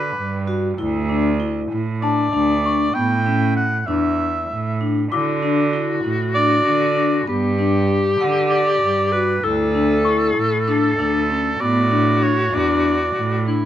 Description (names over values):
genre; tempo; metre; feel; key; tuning
contemporary instrumental, chamber music in an uneven meter; 194 BPM (eighths); 7/8; straight; D major; A4 = 440 Hz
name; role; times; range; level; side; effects
clear oboe; melody; 0.0-13.5 s; A4 to G5; -21 LUFS; right 1 dB; none
rich cello; bass; 0.0-13.7 s; D2 to D3; -22 LUFS; right 4 dB; none
celesta; texture; 0.0-5.7, 9.4-10.6 s; A5 to E6; -26 LUFS; left 7 dB; none
vibraphone with medium hard mallets; arpeggios; 0.5-13.7 s; B3 to F#5; -22 LUFS; left 3 dB; none
bright clarinet; second line; 5.1-13.7 s; E4 to B4; -21 LUFS; left 2 dB; none
room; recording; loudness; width
light reverb; close, detailed microphones; -16 LUFS; side -11 dB against mid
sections
0.0-13.7 A section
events
none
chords
0.0 Gmaj7; 0.8 D5; 2.9 A7sus4; 5.1 D; 7.3 Gmaj7(no3); 9.4 D5; 11.6 Asus4